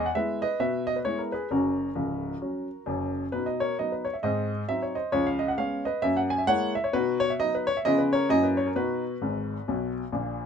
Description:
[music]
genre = jazz, stride piano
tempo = 132 BPM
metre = 4/4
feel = swing 61% on 8ths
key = B major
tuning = A4 = 440 Hz
[part]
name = warm baby grand piano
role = solo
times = 0.0-10.5 s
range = C#1 to G#5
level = -25 LUFS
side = equal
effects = none
[sound]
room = light reverb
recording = minimal, uncompressed stereo recording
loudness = -25 LUFS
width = side -7 dB against mid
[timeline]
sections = 0.0-10.5 A section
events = grand piano fill 9.2-10.5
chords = 0.0 E; 1.5 F#; 3.3 B; 4.2 G#7; 5.1 C#7; 6.0 F#9; 7.0 B; 7.9 C#7; 8.3 F#7; 8.8 B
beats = 0.15 0.61 1.06 | 1.51 1.97 2.42 2.87 | 3.33 3.78 4.23 4.69 | 5.14 5.59 6.05 6.50 | 6.95 7.41 7.86 8.31 | 8.77 9.22 9.67 10.12

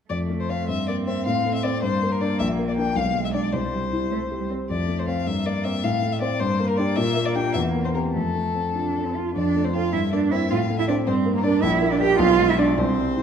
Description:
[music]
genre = quick classical-period movement for piano trio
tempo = 104 BPM (dotted quarters)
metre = 6/8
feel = rubato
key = F major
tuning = A4 = 440 Hz
[part]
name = rich violin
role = melody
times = 0.1-13.2 s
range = A4 to G5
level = -28 LUFS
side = left 6 dB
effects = none
[part]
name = rich cello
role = second line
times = 0.1-13.2 s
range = G3 to G4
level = -25 LUFS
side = right 6 dB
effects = none
[part]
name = warm grand piano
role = accompaniment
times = 0.1-13.2 s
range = Bb1 to D5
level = -23 LUFS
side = left 1 dB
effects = none
[sound]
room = wet recital hall reverb, RT60 1.6 s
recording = dark, warm production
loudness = -20 LUFS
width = side -7 dB against mid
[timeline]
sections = 0.1-9.4 A section; 9.4-13.2 A section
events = none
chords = 0.1 F; 0.7 C5/G; 1.3 F/A; 1.8 Gm; 2.4 Bb6; 3.0 Bdim7; 3.5 C; 4.7 F; 5.3 C5/G; 5.8 F/A; 6.4 Gm; 7.0 Gm/Bb; 7.5 C7/E; 8.1 F; 9.9 C5/G; 10.5 F/A; 11.1 Gm; 11.6 Gm6/Bb; 12.2 Bdim7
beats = | 0.10 0.69 | 1.26 1.83 | 2.40 2.96 | 3.53 4.11 | 4.69 5.27 | 5.83 6.40 | 6.97 7.55 | 8.14 8.75 | 9.36 9.93 | 10.50 11.07 | 11.63 12.20 | 12.78

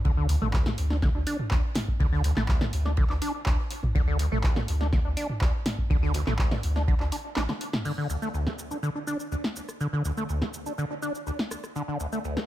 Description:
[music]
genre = acid house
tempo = 123 BPM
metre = 4/4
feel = straight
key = unclear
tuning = A4 = 441 Hz
[part]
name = liquid acid bass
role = riff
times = 0.0-12.4 s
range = D2 to D4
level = -30 LUFS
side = equal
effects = phaser, overdrive, tape echo
[part]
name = saturated sub bass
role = bass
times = 0.0-7.5 s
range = A1 to D2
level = -27 LUFS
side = equal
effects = tube saturation, sidechain pumping
[part]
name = electronic kick drum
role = drums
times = 0.0-7.0 s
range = none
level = -26 LUFS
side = equal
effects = none
[part]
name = open jazz drum kit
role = drums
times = 0.0-12.5 s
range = ride cymbal, snare drum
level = -46 LUFS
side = right 1 dB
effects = high-pass filter on cymbals, low-pass filter on cymbals, high-pass filter on snare, low-pass filter on snare, high-pass filter on room, low-pass filter on room, tape echo
[part]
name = punchy analog drum machine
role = drums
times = 0.3-12.5 s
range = crash cymbal, handclaps, hi-hat, rim click, shaker, snare drum, toms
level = -32 LUFS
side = equal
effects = none
[sound]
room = light reverb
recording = echo-heavy mix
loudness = -25 LUFS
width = side -14 dB against mid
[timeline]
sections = 0.0-7.9 A section; 7.9-12.5 B section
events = filter sweep on acid bass 0.0-7.9; break 7.4-7.9; drum fill 7.4-7.9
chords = 0.0 D5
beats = | 0.05 0.54 1.02 1.51 | 2.00 2.49 2.98 3.46 | 3.95 4.44 4.93 5.41 | 5.90 6.39 6.88 7.37 | 7.85 8.34 8.83 9.32 | 9.80 10.29 10.78 11.27 | 11.76 12.24

